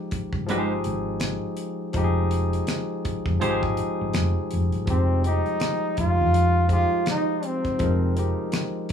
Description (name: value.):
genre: R&B, neo-soul.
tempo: 82 BPM.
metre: 4/4.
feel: swing 59% on 16ths.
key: F minor.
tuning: A4 = 440 Hz.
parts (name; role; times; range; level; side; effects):
barky tine electric piano; accompaniment; 0.0-8.9 s; F3 to Bb4; -27 LUFS; left 3 dB; overdrive.
hollow-body short-scale fingered electric bass; bass; 0.1-8.3 s; F1 to F2; -24 LUFS; equal; none.
damped 70s drum kit; drums; 0.1-8.9 s; finger snaps, hi-hat, kick drum, snare drum; -30 LUFS; equal; none.
clean electric guitar; second line; 0.5-3.6 s; Ab3 to C5; -26 LUFS; right 12 dB; none.
warm flugelhorn; melody; 4.9-8.2 s; C4 to F4; -24 LUFS; right 1 dB; tape echo.
room: little or no reverb.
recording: rough home demo mix, small room ambience.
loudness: -22 LUFS.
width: side -8 dB against mid.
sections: 0.0-4.9 A section; 4.9-8.9 B section.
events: none.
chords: 0.0 Fm9.